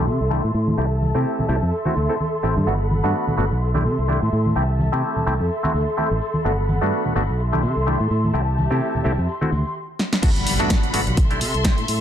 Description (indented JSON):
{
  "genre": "filtered disco house",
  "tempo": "127 BPM",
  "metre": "4/4",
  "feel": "swing 56% on 16ths",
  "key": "G major",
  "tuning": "A4 = 440 Hz",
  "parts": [
    { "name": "clav", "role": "accompaniment", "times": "0.0-11.8 s", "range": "A3 to A4", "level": "-25 LUFS", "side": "equal", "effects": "phaser, sidechain pumping, low-pass filter" },
    { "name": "clear studio string section", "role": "sustained chords", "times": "0.0-12.0 s", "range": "G3 to C6", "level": "-26 LUFS", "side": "left 1 dB", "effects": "sidechain pumping, low-pass filter" },
    { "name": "fingered electric bass", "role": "bass", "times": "0.0-12.0 s", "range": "G1 to C3", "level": "-21 LUFS", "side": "equal", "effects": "sidechain pumping, low-pass filter" },
    { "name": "tambourine and congas", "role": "percussion", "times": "0.1-9.7 s", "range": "none", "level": "-27 LUFS", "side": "equal", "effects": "sidechain pumping on perc, low-pass filter on perc" },
    { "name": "punchy analog drum machine", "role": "drums", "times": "10.0-12.0 s", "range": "crash cymbal, hi-hat, snare drum", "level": "-24 LUFS", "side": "equal", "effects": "sidechain pumping on hats, sidechain pumping on cymbals" },
    { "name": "electronic kick drum", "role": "drums", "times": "10.2-11.8 s", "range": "none", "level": "-18 LUFS", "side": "equal", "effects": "none" },
    { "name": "impact", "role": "sound effects", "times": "10.2-12.0 s", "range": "none", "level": "-29 LUFS", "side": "equal", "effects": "none" }
  ],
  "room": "light reverb, digital ambience",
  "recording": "none",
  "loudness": "-18 LUFS",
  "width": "side -10 dB against mid",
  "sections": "0.0-10.2 A section; 10.2-12.0 B section",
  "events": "filter sweep 0.0-10.2; drum fill 10.0; drop 10.2-12.0; impact 10.2-12.0",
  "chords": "0.0 C6; 0.8 Fmaj9/C (rootless); 1.7 D9sus4; 2.7 Gmaj7; 3.6 C6; 4.6 Fmaj9/C (rootless); 5.5 D7sus2; 6.5 Gmaj7; 7.4 C6; 8.3 Fmaj9/C (rootless); 9.3 D9sus4; 10.2 Gmaj7; 11.2 C6",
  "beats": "0.31 | 0.78 1.25 1.73 2.20 | 2.67 3.14 3.62 4.09 | 4.56 5.03 5.50 5.98 | 6.45 6.92 7.39 7.87 | 8.34 8.81 9.29 9.76 | 10.23 10.70 11.17 11.65"
}